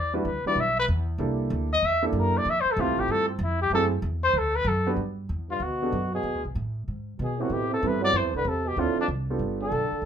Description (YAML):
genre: jazz, small-group swing and bop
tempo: 190 BPM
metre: 4/4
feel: swing 63% on 8ths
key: E minor, G major from 5.0 s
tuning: A4 = 440 Hz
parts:
  - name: mellow trumpet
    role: melody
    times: 0.0-10.1 s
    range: C4 to E5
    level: -25 LUFS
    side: left 2 dB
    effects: none
  - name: upright bass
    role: bass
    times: 0.0-10.1 s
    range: G1 to B2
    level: -29 LUFS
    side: equal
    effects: none
  - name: warm baby grand piano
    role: accompaniment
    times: 0.1-9.7 s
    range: G3 to B4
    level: -29 LUFS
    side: right 4 dB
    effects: none
  - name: growling trombone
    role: second line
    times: 5.5-10.1 s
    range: F2 to F#3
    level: -32 LUFS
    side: right 5 dB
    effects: none
room: light reverb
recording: minimal, uncompressed stereo recording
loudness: -23 LUFS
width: side -8 dB against mid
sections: 0.0-5.0 A section; 5.0-10.1 B section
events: trumpet solo 0.0-5.0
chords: 0.0 Em9; 1.2 C13; 2.5 Fmaj9; 3.7 F#m7b5; 4.4 D; 5.0 Gmaj7; 6.2 E; 7.5 Am9; 8.8 Dm9; 9.4 G9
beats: 0.25 0.57 0.88 | 1.20 1.51 1.83 2.14 | 2.46 2.77 3.09 3.40 | 3.72 4.04 4.35 4.67 | 4.98 5.30 5.61 5.93 | 6.25 6.56 6.88 7.19 | 7.51 7.83 8.14 8.46 | 8.77 9.09 9.41 9.72 | 10.04